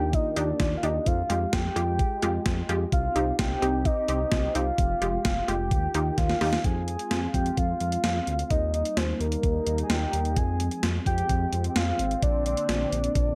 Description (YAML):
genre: synth-pop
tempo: 129 BPM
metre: 4/4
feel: straight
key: unclear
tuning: A4 = 440 Hz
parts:
  - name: soft octave-layered synth lead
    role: melody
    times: 0.0-13.3 s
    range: Bb4 to Ab5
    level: -32 LUFS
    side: equal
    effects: chorus, tremolo
  - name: unison pluck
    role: accompaniment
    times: 0.0-6.6 s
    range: Ab3 to G4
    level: -33 LUFS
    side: equal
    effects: none
  - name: sweeping resonant pad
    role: sustained chords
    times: 0.0-13.3 s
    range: D3 to Bb4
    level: -37 LUFS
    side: equal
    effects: chorus
  - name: smooth gliding synth bass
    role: bass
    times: 0.0-13.3 s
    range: F1 to F2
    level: -32 LUFS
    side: equal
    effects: none
  - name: gated 80s digital drum machine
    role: drums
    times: 0.1-13.3 s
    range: hi-hat, kick drum, snare drum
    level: -30 LUFS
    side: equal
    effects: gated reverb, gated reverb snare
room: light reverb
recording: none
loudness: -26 LUFS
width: mono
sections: 0.0-6.6 A section; 6.6-13.3 B section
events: drum fill 6.2-6.6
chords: 0.0 Ebmaj7; 1.1 Fmadd9; 2.9 Cm; 4.8 Fmadd9; 5.7 Ebadd9; 6.6 Fm; 8.5 Eb; 10.4 Fm; 12.2 Bbadd9